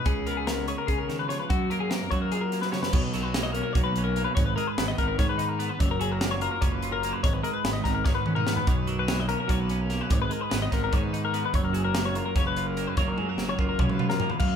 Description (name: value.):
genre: math rock and midwest emo.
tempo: 293 BPM (eighths).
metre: 7/8.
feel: straight.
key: F# major.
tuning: A4 = 443 Hz.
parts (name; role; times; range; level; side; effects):
twelve-string electric guitar; accompaniment; 0.0-14.6 s; F#2 to A#4; -31 LUFS; right 4 dB; none.
twelve-string electric guitar; arpeggios; 0.0-14.6 s; F#4 to E#5; -30 LUFS; left 7 dB; none.
fuzz fingered electric bass; bass; 0.1-14.6 s; F#1 to C#3; -31 LUFS; equal; overdrive.
crisp fusion drum kit; drums; 0.1-14.5 s; crash cymbal, hi-hat, kick drum, snare drum, toms; -28 LUFS; equal; none.
room: moderate large studio reverb, RT60 0.8 s.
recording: band playing live in one room.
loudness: -24 LUFS.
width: side -8 dB against mid.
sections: 0.0-2.9 A section; 2.9-14.4 B section.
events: drum fill 2.6-2.9, 8.1-8.7, 13.2-14.4.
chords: 0.1 C#7; 1.5 F#maj7; 2.9 Bmaj7sus2; 4.4 G#m; 5.8 F#maj7; 7.2 G#m7; 8.7 Bmaj7sus2; 10.1 G#m; 11.5 F#maj7.